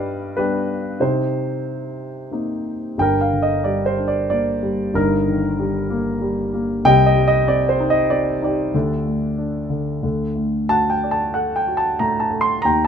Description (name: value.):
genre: classical, lyrical solo piano.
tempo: 93 BPM.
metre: 3/4.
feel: rubato.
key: G minor.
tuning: A4 = 440 Hz.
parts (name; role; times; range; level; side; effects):
dark concert grand piano; solo; 0.0-12.9 s; G1 to C6; -17 LUFS; equal; none.
room: light reverb.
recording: none.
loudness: -17 LUFS.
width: side -7 dB against mid.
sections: 0.0-3.0 A section; 3.0-12.9 B section.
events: none.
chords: 0.0 G; 1.0 Cm7; 3.0 Gm; 5.0 Eb/G; 6.9 Cm; 8.7 Dsus4; 10.0 D.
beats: 0.38 | 1.01 1.65 2.32 | 2.99 3.65 4.31 | 4.95 5.59 6.23 | 6.86 7.49 8.11 | 8.74 9.38 10.04 | 10.69 11.34 11.99 | 12.63.